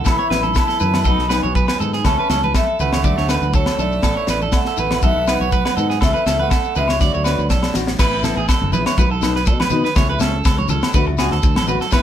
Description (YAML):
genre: highlife guitar band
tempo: 121 BPM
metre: 4/4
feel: straight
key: A major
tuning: A4 = 440 Hz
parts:
  - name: picked steel-string acoustic guitar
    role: accompaniment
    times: 0.0-12.0 s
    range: E3 to F#4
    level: -26 LUFS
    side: left 5 dB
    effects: none
  - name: electric guitar at the edge of break-up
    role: arpeggios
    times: 0.0-12.0 s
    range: G#4 to D5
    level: -23 LUFS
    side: right 6 dB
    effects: none
  - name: fingered electric bass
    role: bass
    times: 0.0-12.0 s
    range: F#1 to B2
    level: -22 LUFS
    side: equal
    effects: none
  - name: shekere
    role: percussion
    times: 0.0-12.0 s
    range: none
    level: -30 LUFS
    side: left 6 dB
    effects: none
  - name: vibraphone with medium mallets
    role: melody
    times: 0.1-7.7 s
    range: C#5 to B5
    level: -22 LUFS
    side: equal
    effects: none
  - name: raspy tenor saxophone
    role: second line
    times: 0.1-7.7 s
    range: F#3 to E4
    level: -30 LUFS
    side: right 5 dB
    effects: none
  - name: tight funk drum kit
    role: drums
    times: 0.1-12.0 s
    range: crash cymbal, kick drum, snare drum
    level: -19 LUFS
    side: equal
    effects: none
  - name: agogo bells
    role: percussion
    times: 0.1-12.0 s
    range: none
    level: -29 LUFS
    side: left 7 dB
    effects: none
  - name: congas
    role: percussion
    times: 0.3-11.8 s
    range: none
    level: -29 LUFS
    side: right 2 dB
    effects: none
room: light reverb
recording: band playing live in one room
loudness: -15 LUFS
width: side -10 dB against mid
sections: 0.0-8.0 A section; 8.0-12.0 B section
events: drum fill 7.0-8.0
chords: 0.1 Asus2; 1.1 B; 2.0 A/C#; 3.0 D; 4.0 Asus2; 5.0 B; 6.0 A/C#; 7.0 D; 8.0 Asus2; 9.0 B; 10.0 A/C#; 10.9 D